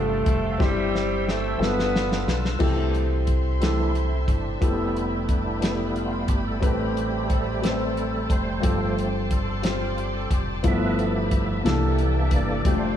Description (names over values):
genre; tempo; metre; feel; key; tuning
slow gospel; 60 BPM (dotted quarters); 6/8; straight; C major; A4 = 440 Hz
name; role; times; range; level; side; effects
breathy tenor saxophone; melody; 0.0-2.4 s; G3 to B3; -30 LUFS; right 5 dB; tape echo
warm horn section; melody; 0.0-2.6 s; G3 to B4; -29 LUFS; left 3 dB; none
warm grand piano; accompaniment; 0.0-13.0 s; G2 to E5; -27 LUFS; left 2 dB; none
bright tonewheel organ; sustained chords; 0.0-13.0 s; E3 to E6; -29 LUFS; right 3 dB; fast rotary speaker, chorus vibrato
deep dub fingered electric bass; bass; 0.0-13.0 s; F1 to C2; -27 LUFS; equal; none
warm soul drum kit; drums; 0.3-12.8 s; crash cymbal, hi-hat, kick drum, snare drum; -26 LUFS; equal; none
dark chamber string section; sustained chords; 2.6-13.0 s; C4 to C6; -36 LUFS; left 2 dB; none
room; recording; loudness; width
light reverb; small room reverb; -21 LUFS; side -10 dB against mid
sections
0.0-2.6 A section; 2.6-13.0 B section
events
drum fill 0.6-2.6; tonewheel organ solo 2.6-13.0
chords
0.0 G9sus4; 0.6 C/G; 1.6 G13; 2.6 C6; 4.6 Fmaj9#11; 6.6 Am9; 8.6 G9sus4; 10.6 G13; 11.6 C13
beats
| 0.60 1.60 | 2.61 3.62 | 4.62 5.63 | 6.63 7.63 | 8.64 9.64 | 10.65 11.65 | 12.65